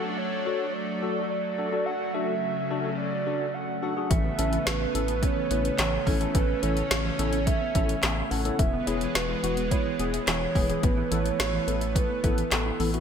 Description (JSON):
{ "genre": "synth-pop", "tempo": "107 BPM", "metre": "4/4", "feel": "straight", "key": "A major", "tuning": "A4 = 440 Hz", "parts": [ { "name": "hollow clarinet-like synth lead", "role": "melody", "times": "0.0-12.9 s", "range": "A4 to F#5", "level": "-31 LUFS", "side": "right 3 dB", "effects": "chorus, phaser" }, { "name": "bright tine electric piano", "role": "accompaniment", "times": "0.0-13.0 s", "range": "B3 to B4", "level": "-32 LUFS", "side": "left 5 dB", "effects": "ensemble chorus" }, { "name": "lush unison pad", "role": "sustained chords", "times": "0.0-13.0 s", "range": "C#3 to D4", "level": "-32 LUFS", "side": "right 1 dB", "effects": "chorus" }, { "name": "soft round pluck", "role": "arpeggios", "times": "4.1-13.0 s", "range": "E3 to E4", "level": "-34 LUFS", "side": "right 4 dB", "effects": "chorus, digital delay" }, { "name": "round analog bass", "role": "bass", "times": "4.1-13.0 s", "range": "E1 to A1", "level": "-30 LUFS", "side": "left 1 dB", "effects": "none" }, { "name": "deep house drum kit", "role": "drums", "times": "4.1-13.0 s", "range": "handclaps, hi-hat, kick drum, snare drum", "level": "-27 LUFS", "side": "left 1 dB", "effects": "gated reverb" } ], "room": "moderate plate reverb, RT60 2.6 s", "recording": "bright 1980s-style digital production", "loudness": "-24 LUFS", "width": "side -7 dB against mid", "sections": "0.0-13.0 A section", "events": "none", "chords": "0.0 D; 4.1 Aadd9; 8.6 E; 10.8 Asus2" }